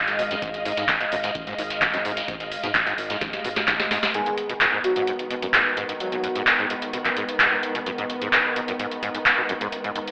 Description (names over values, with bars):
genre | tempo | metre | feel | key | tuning
acid house | 129 BPM | 4/4 | straight | G# dorian | A4 = 441 Hz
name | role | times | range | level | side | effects
muted studio string section | sustained chords | 0.0-10.1 s | G#2 to E#5 | -32 LUFS | equal | sidechain pumping
round analog bass | bass | 0.1-3.9 s | F#1 to G#2 | -40 LUFS | equal | sidechain pumping
booming analog drum machine | drums | 0.1-10.1 s | handclaps, hi-hat, snare drum | -24 LUFS | equal | none
shekere | percussion | 0.1-4.1 s | none | -36 LUFS | equal | none
acid bass, saw | riff | 0.2-10.0 s | F#2 to B2 | -34 LUFS | equal | ensemble chorus, sidechain pumping, analog delay
electronic kick drum | drums | 0.4-3.8 s | none | -42 LUFS | equal | none
airy dreamy lead | melody | 4.1-6.2 s | F#4 to G#4 | -30 LUFS | equal | chorus, analog delay
room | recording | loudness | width
light reverb, digital ambience | dry, gritty hardware recording, telephone sound | -23 LUFS | mono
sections
0.0-4.1 A section; 4.1-10.1 B section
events
drop 0.0-4.1; drum fill 3.2-4.1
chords
0.0 G#5; 4.1 G#m